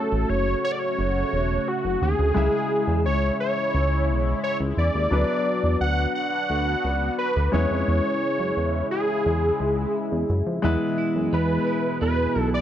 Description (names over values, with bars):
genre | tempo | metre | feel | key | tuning
pop | 87 BPM | 4/4 | straight | unclear | A4 = 438 Hz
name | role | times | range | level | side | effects
wide unison lead | melody | 0.0-12.6 s | F#4 to F#5 | -25 LUFS | equal | none
clear baby grand piano | accompaniment | 0.0-12.6 s | C#3 to E5 | -30 LUFS | left 3 dB | none
sweeping resonant pad | sustained chords | 0.0-12.6 s | B2 to F#4 | -29 LUFS | equal | chorus
chorused synth bass | bass | 0.1-12.6 s | E1 to F#2 | -24 LUFS | equal | none
twelve-string electric guitar | riff | 10.6-12.6 s | E3 to E4 | -28 LUFS | right 6 dB | wide subtle chorus
room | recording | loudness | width
wet studio reverb, RT60 0.6 s | dark, warm production | -21 LUFS | side -10 dB against mid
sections
0.0-10.6 A section; 10.6-12.6 B section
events
none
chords
0.0 F#m; 2.4 C#m; 5.1 Bm/D; 7.5 E6; 10.6 E